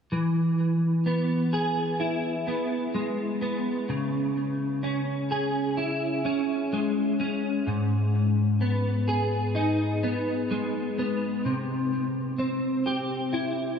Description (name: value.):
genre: rock.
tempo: 64 BPM.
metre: 4/4.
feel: straight.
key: E major.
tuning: A4 = 441 Hz.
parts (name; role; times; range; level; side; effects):
clean electric guitar; solo; 0.1-13.8 s; G#2 to G#4; -24 LUFS; equal; ensemble chorus, tape echo.
room: wet huge ambient reverb, RT60 5.0 s.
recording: dreamy mix soaked in reverb, small room ambience.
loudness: -24 LUFS.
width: side -7 dB against mid.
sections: 0.1-13.8 A section.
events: none.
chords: 0.1 E; 3.9 C#m; 7.7 G#m; 11.4 C.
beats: | 0.12 1.06 2.00 2.95 | 3.89 4.83 5.78 6.72 | 7.67 8.61 9.55 10.50 | 11.44 12.38 13.33.